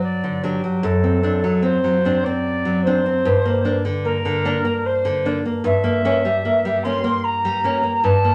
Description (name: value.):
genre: romantic duo for recorder and classical guitar.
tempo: 75 BPM.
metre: 3/4.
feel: rubato.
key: G minor.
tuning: A4 = 438 Hz.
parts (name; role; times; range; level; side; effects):
mellow alto recorder; melody; 0.0-8.3 s; G4 to C6; -23 LUFS; equal; none.
nylon-string guitar; accompaniment; 0.0-8.3 s; F#2 to D4; -22 LUFS; equal; none.
room: wet studio ambience, RT60 0.5 s.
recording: none.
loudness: -20 LUFS.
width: mono.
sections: 0.0-8.3 A section.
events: none.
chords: 0.0 D/G; 0.8 D7/F#; 3.2 Gm; 5.6 Gdim7.